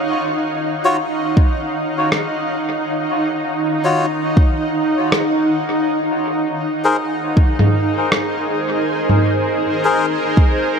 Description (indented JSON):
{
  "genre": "ambient dub",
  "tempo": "80 BPM",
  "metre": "4/4",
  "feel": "swing 60% on 16ths",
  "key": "Eb dorian",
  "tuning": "A4 = 440 Hz",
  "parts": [
    { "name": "granular cloud pad", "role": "sustained chords", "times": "0.0-10.8 s", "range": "Eb4 to Gb5", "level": "-18 LUFS", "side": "right 1 dB", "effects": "built-in reverb" },
    { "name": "melodica", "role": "stabs", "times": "0.8-10.1 s", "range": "F4 to Db5", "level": "-22 LUFS", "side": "left 2 dB", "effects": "dub echo" },
    { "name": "electronic kick drum", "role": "drums", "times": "1.4-10.6 s", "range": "none", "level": "-12 LUFS", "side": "equal", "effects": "none" },
    { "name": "lo-fi sampler-style drum kit", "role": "drums", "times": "2.1-9.2 s", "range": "rim click, toms", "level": "-20 LUFS", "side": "equal", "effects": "dub echo" }
  ],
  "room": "moderate huge ambient reverb, RT60 5.0 s",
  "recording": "none",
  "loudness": "-15 LUFS",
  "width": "side -6 dB against mid",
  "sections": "0.0-10.8 A section",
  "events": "none",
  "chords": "0.0 Ebm9; 5.9 Abadd9/Eb"
}